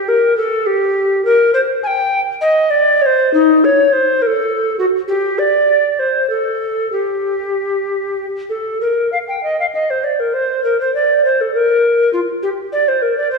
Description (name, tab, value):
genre	classical, baroque-style fantasia for unaccompanied recorder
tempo	62-70 BPM (dotted quarters)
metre	6/8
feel	rubato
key	Bb major from 8.8 s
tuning	A4 = 440 Hz
part	mellow hollow tenor recorder	solo	0.0-13.4 s	Eb4 to Ab5	-13 LUFS	equal	none
room	wet scoring stage reverb, RT60 1.9 s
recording	recorded in a church or concert hall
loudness	-13 LUFS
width	side -3 dB against mid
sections	0.0-8.8 A section; 8.8-13.4 A section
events	none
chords	none